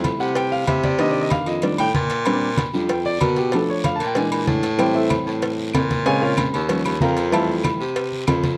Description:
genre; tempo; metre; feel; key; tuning
Afro-Cuban jazz; 190 BPM; 4/4; straight; F major; A4 = 439 Hz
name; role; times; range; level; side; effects
warm grand piano; accompaniment; 0.0-7.8 s; Db3 to Bb5; -25 LUFS; equal; none
mellow baritone saxophone; bass; 0.0-8.6 s; Eb2 to C3; -25 LUFS; equal; none
agogo bells and timbales; percussion; 0.0-8.4 s; none; -30 LUFS; equal; none
congas; percussion; 0.0-8.6 s; none; -27 LUFS; equal; none
cowbell; percussion; 0.0-8.6 s; none; -32 LUFS; equal; none
guiro; percussion; 0.0-8.6 s; none; -40 LUFS; equal; none
claves; percussion; 4.8-8.4 s; none; -37 LUFS; equal; none
room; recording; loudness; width
small room ambience; dry, close 1970s-style studio recording; -21 LUFS; mono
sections
0.0-8.6 A section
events
grand piano solo 0.0-8.6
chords
0.0 Fmaj9; 1.0 Cm9; 1.6 F13; 2.3 Bb69; 3.5 Bm7b5; 4.2 Bb7#11; 4.8 Am7; 6.1 Bbm7; 6.7 Eb9; 7.3 Fmaj9

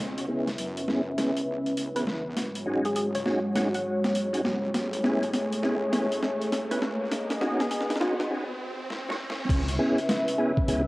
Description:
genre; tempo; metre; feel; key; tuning
glitch hop; 101 BPM; 4/4; swing 64% on 16ths; C# minor; A4 = 435 Hz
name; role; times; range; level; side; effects
dark analog pad; sustained chords; 0.0-10.9 s; G#3 to E5; -29 LUFS; equal; chorus, sidechain pumping
wobble bass; bass; 0.0-10.9 s; G#1 to F#2; -37 LUFS; equal; chorus, high-pass filter
riser; sound effects; 0.0-9.5 s; none; -38 LUFS; right 1 dB; none
boom bap sampler-style drum kit; drums; 0.2-10.8 s; crash cymbal, hi-hat, snare drum; -31 LUFS; equal; overdrive
tonewheel organ; stabs; 0.3-10.8 s; B3 to C#5; -30 LUFS; equal; chorus vibrato, fast rotary speaker, sidechain pumping, low-pass filter, analog delay
woody wave-folded pluck; melody; 2.0-8.3 s; F#4 to F#5; -34 LUFS; equal; chorus, cassette tape, analog delay
electronic kick drum; drums; 9.5-10.7 s; none; -26 LUFS; equal; none
room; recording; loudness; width
wet spring reverb, RT60 2.2 s; home recording on cassette, vinyl crackle, high-pass filter; -25 LUFS; side -20 dB against mid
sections
0.0-9.5 A section; 9.5-10.9 B section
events
build-up 0.0-9.5; drum fill 0.0-8.3, 8.9-9.5; riser 0.0-9.5; filter sweep on tonewheel organ 0.0-9.5; filter sweep on synth pluck 0.0-9.5; break 8.3-9.5; drop 9.5-10.9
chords
0.0 C#m7; 2.4 G#7sus4; 4.7 Amaj7; 7.1 B6; 9.5 C#m7

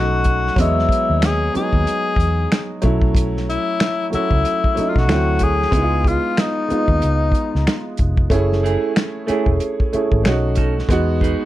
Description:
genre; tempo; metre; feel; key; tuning
R&B, neo-soul; 93 BPM; 4/4; swing 61% on 16ths; unclear; A4 = 439 Hz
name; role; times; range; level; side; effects
breathy tenor saxophone; melody; 0.0-8.0 s; D#4 to G#4; -20 LUFS; left 4 dB; slapback echo, plate reverb
warm upright piano; accompaniment; 0.0-11.5 s; E3 to D#5; -22 LUFS; right 2 dB; plate reverb
vintage muted fingered electric bass; bass; 0.0-11.3 s; E1 to E2; -20 LUFS; equal; none
warm soul drum kit; drums; 0.2-11.4 s; finger snaps, hi-hat, kick drum, snare drum; -19 LUFS; equal; none
semi-hollow electric guitar; second line; 8.6-11.5 s; A3 to B4; -25 LUFS; right 6 dB; plate reverb
room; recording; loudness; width
light reverb; none; -16 LUFS; side -14 dB against mid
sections
0.0-11.5 A section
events
none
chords
0.0 B9; 0.6 Emaj7; 2.8 B7sus4; 5.1 D9; 5.7 C#9; 8.3 F#m9; 10.2 B9; 10.9 Emaj7

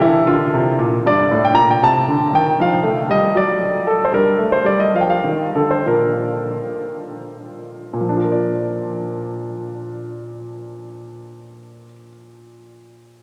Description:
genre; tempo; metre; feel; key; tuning
classical, baroque-style suite movement for grand piano; 54-79 BPM (dotted quarters); 6/8; rubato; Bb major; A4 = 443 Hz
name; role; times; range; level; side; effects
clear baby grand piano; solo; 0.0-13.2 s; G2 to Bb5; -18 LUFS; equal; none
room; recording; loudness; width
wet cathedral reverb, RT60 5.9 s; none; -17 LUFS; mono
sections
0.0-7.9 A section; 7.9-12.1 B section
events
slowing down 3.3-7.9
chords
0.3 Dm; 1.0 Gm; 1.8 Cm; 2.6 F7; 3.3 N.C.; 4.1 Gm; 4.9 Dm7; 5.8 Bb

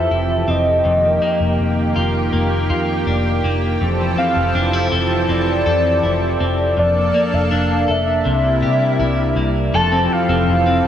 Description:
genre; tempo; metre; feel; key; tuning
dream pop; 81 BPM; 4/4; straight; F major; A4 = 440 Hz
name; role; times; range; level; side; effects
warm velvety synth lead; melody; 0.0-10.9 s; D5 to A5; -19 LUFS; equal; chorus, tape echo
lush unison pad; sustained chords; 0.0-10.9 s; C3 to A4; -20 LUFS; right 1 dB; chorus
clean electric guitar; arpeggios; 0.0-10.9 s; F2 to A4; -21 LUFS; left 2 dB; lush chorus, tape echo
vintage muted picked electric bass; bass; 0.0-10.9 s; F1 to C3; -21 LUFS; equal; none
room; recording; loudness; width
moderate lush hall reverb, RT60 1.5 s; none; -15 LUFS; side -10 dB against mid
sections
0.0-9.7 A section; 9.7-10.9 B section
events
none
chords
0.0 Fmaj7; 0.8 Ebmaj7/F; 3.8 Fmaj7; 6.8 Bbmaj7/F; 8.3 C7; 9.7 Fmaj7

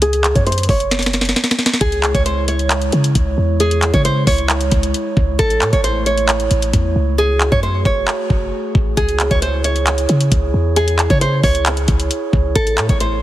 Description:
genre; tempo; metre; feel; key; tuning
hip hop, trap; 134 BPM; 4/4; half-time; C# harmonic minor; A4 = 440 Hz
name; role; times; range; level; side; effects
nylon-string guitar; melody; 0.0-13.2 s; G#4 to C#5; -19 LUFS; right 1 dB; low-pass filter, digital delay
warm 808-style bass; bass; 0.0-13.2 s; F#1 to C#3; -18 LUFS; equal; none
trap drum kit; drums; 0.0-13.1 s; handclaps, hi-hat, kick drum, snare drum; -18 LUFS; equal; none
glass harmonica; sustained chords; 1.8-13.2 s; G#3 to C#5; -23 LUFS; right 1 dB; none
room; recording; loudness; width
small room reverb; heavily compressed radio sound, multiband compression; -13 LUFS; side -14 dB against mid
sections
0.0-13.2 A section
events
filter sweep on nylon-string guitar 0.0-1.8; drum fill 0.9-1.8; hi-hats muted 7.2-9.0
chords
0.0 F#5; 1.8 C#m; 5.4 A; 7.2 F#madd9; 9.0 C#m; 12.6 A

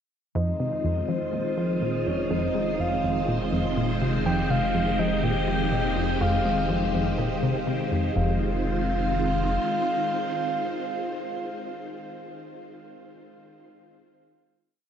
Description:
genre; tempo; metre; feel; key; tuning
ambient, sequencer-driven space music; 123 BPM; 4/4; straight; F minor; A4 = 440 Hz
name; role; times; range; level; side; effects
soft octave-layered synth lead; melody; 0.4-11.9 s; C5 to G5; -30 LUFS; equal; chorus, ping-pong delay
phased string machine; sustained chords; 0.4-11.9 s; Eb3 to C5; -28 LUFS; equal; ensemble chorus, phaser
tight sequenced synth; riff; 0.4-8.4 s; F2 to Ab3; -28 LUFS; equal; chorus, ping-pong delay
round analog bass; bass; 0.4-9.6 s; F1; -32 LUFS; equal; none
wind-like tuned noise texture; texture; 0.9-8.2 s; Eb5; -39 LUFS; right 1 dB; built-in reverb
room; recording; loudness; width
wet huge ambient reverb, RT60 7.6 s; cassette tape, nothing above 7.9 kHz; -23 LUFS; side -8 dB against mid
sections
0.4-8.2 A section; 8.2-12.1 final chord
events
fade-in on analog synth bass 0.4-8.2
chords
0.4 Fm7

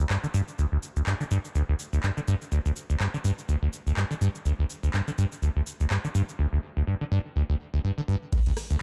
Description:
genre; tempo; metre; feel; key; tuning
acid house; 124 BPM; 4/4; swing 57% on 16ths; unclear; A4 = 441 Hz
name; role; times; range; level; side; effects
acid bass, saw; riff; 0.0-8.8 s; D2 to D3; -28 LUFS; equal; tube saturation, lush chorus, sidechain pumping
electro analog drum machine; drums; 0.0-8.8 s; crash cymbal, handclaps, hi-hat, rim click, shaker; -39 LUFS; equal; studio reverb
electronic kick drum; drums; 8.3-8.4 s; none; -27 LUFS; equal; studio reverb
room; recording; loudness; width
light reverb; dark, warm production; -28 LUFS; mono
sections
0.0-8.3 A section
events
none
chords
none

